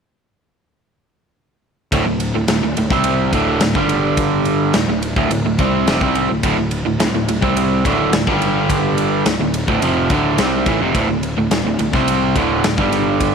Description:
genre	classic rock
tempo	106 BPM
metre	4/4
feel	straight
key	unclear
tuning	A4 = 441 Hz
part	overdriven electric guitar	riff	1.9-13.3 s	D2 to C4	-21 LUFS	left 12 dB	none
part	overdriven electric guitar	riff	1.9-13.3 s	D2 to C4	-18 LUFS	right 10 dB	none
part	fuzz picked electric bass	bass	1.9-13.3 s	D1 to C2	-22 LUFS	left 1 dB	overdrive
part	big rock drum kit	drums	1.9-13.3 s	kick drum, ride cymbal, snare drum	-21 LUFS	left 1 dB	none
room	light reverb, small room ambience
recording	1960s-style stereo with parts hard left and right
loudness	-14 LUFS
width	side -6 dB against mid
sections	1.9-13.3 A section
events	none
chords	1.9 D5; 3.8 G5; 4.8 D5; 8.3 G5; 9.3 D5; 12.8 G5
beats	| 1.93 2.49 3.06 3.62 | 4.19 4.75 5.32 5.88 | 6.45 7.01 7.57 8.13 | 8.70 9.26 9.83 10.39 | 10.95 11.52 12.08 12.65 | 13.21

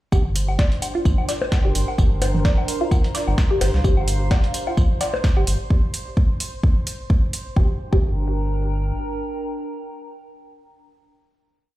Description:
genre	minimal techno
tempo	129 BPM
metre	4/4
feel	swing 55% on 16ths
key	G minor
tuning	A4 = 440 Hz
part	resonant blip pluck	riff	0.1-8.0 s	F4 to D5	-28 LUFS	equal	phaser, sidechain pumping, tape echo
part	round analog bass	bass	0.1-8.9 s	G1 to C2	-21 LUFS	equal	sidechain pumping
part	dusty soul sampler-style drum kit	drums	0.1-5.6 s	hi-hat, snare drum, tambourine	-34 LUFS	equal	sidechain pumping on perc, high-pass filter on perc, high-pass filter on snare, sidechain pumping on hats, high-pass filter on hats, high-pass filter on room
part	electronic kick drum	drums	0.1-8.1 s	none	-18 LUFS	equal	none
part	woodblock, bongos and congas	percussion	0.1-5.5 s	none	-28 LUFS	left 2 dB	overdrive, digital delay
part	pulsing gated texture	texture	0.1-7.6 s	C5	-37 LUFS	right 2 dB	chorus, built-in reverb, sidechain pumping
part	warbly tape-like pad	texture	0.1-11.3 s	D4 to Bb5	-31 LUFS	right 2 dB	chorus, built-in reverb, sidechain pumping
part	electronic hi-hat	drums	0.4-7.4 s	none	-29 LUFS	right 2 dB	none
room	little or no reverb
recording	played on a big sound system in a bare room, large studio reverb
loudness	-18 LUFS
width	side -16 dB against mid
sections	0.1-7.6 groove; 7.6-11.3 final chord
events	none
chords	0.1 Gm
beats	| 0.12 0.59 1.05 1.52 | 1.98 2.45 2.91 3.38 | 3.84 4.31 4.77 5.24 | 5.71 6.17 6.63 7.10 | 7.57 8.03 8.49 8.96 | 9.43 9.89 10.36 10.82

